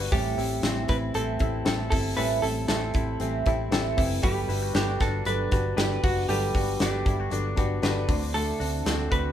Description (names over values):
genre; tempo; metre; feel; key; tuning
jangly indie pop; 117 BPM; 4/4; straight; G major; A4 = 440 Hz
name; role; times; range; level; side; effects
picked steel-string acoustic guitar; accompaniment; 0.0-9.3 s; G2 to F#4; -33 LUFS; right 6 dB; none
reed electric piano; accompaniment; 0.0-9.3 s; C4 to D5; -33 LUFS; left 4 dB; none
direct-recorded clean electric guitar; arpeggios; 0.0-9.3 s; A2 to B4; -34 LUFS; left 5 dB; spring reverb
vintage muted fingered electric bass; bass; 0.0-9.3 s; F#1 to D2; -30 LUFS; equal; none
vintage hollow-body jazz guitar; melody; 0.1-9.3 s; F#4 to B4; -30 LUFS; right 3 dB; none
modern studio drum kit; drums; 0.1-9.2 s; hi-hat, kick drum, snare drum; -28 LUFS; equal; none
room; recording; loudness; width
light reverb; band playing live in one room; -23 LUFS; side -10 dB against mid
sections
0.0-9.3 A section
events
none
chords
0.1 Am7; 4.2 Gmaj7; 8.1 D7